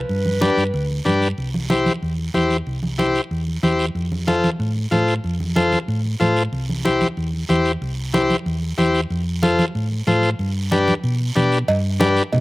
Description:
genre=latin, cumbia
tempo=186 BPM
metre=4/4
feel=straight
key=C major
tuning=A4 = 436 Hz
part: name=growling clarinet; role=second line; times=0.0-1.0 s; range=B4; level=-25 LUFS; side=right 1 dB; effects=slapback echo
part: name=hollow-body short-scale fingered electric bass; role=bass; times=0.0-12.4 s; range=C2 to B2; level=-22 LUFS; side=equal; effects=none
part: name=congas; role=percussion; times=0.1-12.4 s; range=none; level=-24 LUFS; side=right 1 dB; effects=none
part: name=guiro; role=percussion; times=0.1-12.4 s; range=none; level=-33 LUFS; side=right 5 dB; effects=slapback echo
part: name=overdriven combo organ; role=accompaniment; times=0.4-12.2 s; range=D4 to C5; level=-19 LUFS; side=left 2 dB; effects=none
part: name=cowbell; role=percussion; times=11.7-12.4 s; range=none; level=-21 LUFS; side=right 2 dB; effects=none
room=little or no reverb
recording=recorded outdoors, with no room sound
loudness=-17 LUFS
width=side -19 dB against mid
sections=0.0-1.4 A section; 1.4-11.7 B section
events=clarinet solo 0.0-1.4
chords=0.1 G; 1.4 C; 4.0 F; 6.5 C; 9.1 F; 10.4 G

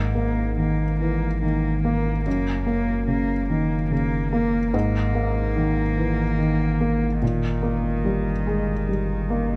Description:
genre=neoclassical piano and strings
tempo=48 BPM (dotted quarters)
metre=6/8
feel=rubato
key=unclear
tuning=A4 = 440 Hz
part: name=warm cello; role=second line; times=0.0-9.6 s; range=D#3 to A#3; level=-31 LUFS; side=equal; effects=none
part: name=dark upright piano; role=accompaniment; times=0.0-9.6 s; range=F#2 to A#3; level=-25 LUFS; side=equal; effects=none
part: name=punchy sub bass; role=bass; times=0.0-9.6 s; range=F#1 to G#1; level=-30 LUFS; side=equal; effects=none
room=light reverb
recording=none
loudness=-23 LUFS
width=mono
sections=0.0-9.6 A section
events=none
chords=0.0 G#sus2; 2.3 F#; 4.7 G#sus2; 7.2 D#/G

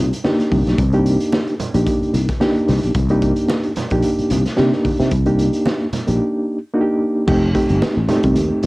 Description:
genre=funk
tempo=111 BPM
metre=4/4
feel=swing 56% on 16ths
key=C dorian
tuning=A4 = 439 Hz
part: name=reed electric piano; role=stabs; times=0.0-8.7 s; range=A3 to G4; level=-18 LUFS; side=equal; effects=fast tremolo, cassette tape
part: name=sustaining fretless electric bass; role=bass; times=0.0-8.7 s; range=F1 to C3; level=-17 LUFS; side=equal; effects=lush chorus
part: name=raw garage drum kit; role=drums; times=0.1-8.7 s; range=crash cymbal, hi-hat, kick drum, snare drum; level=-23 LUFS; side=equal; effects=cassette tape
part: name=congas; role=percussion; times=0.2-8.7 s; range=none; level=-27 LUFS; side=right 3 dB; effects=none
room=light reverb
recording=home recording on cassette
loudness=-15 LUFS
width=side -21 dB against mid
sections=0.0-7.3 A section; 7.3-8.7 B section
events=none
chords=0.0 Cm7; 7.3 F9

